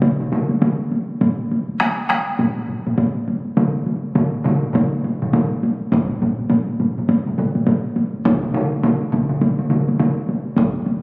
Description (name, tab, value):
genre	japanese traditional, taiko drum ensemble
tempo	102 BPM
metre	4/4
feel	swing 60% on 16ths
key	none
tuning	none
part	solo taiko drums	percussion	0.0-11.0 s	none	-18 LUFS	equal	none
part	solo taiko drums	percussion	0.0-10.2 s	none	-21 LUFS	equal	none
part	taiko ensemble	percussion	1.2-10.7 s	none	-24 LUFS	equal	none
part	taiko ensemble	percussion	5.9-10.7 s	none	-26 LUFS	equal	none
room	wet recital hall reverb, RT60 1.9 s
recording	recorded on a phone in the room, club reverb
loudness	-17 LUFS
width	side -29 dB against mid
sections	0.0-11.0 A section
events	none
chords	none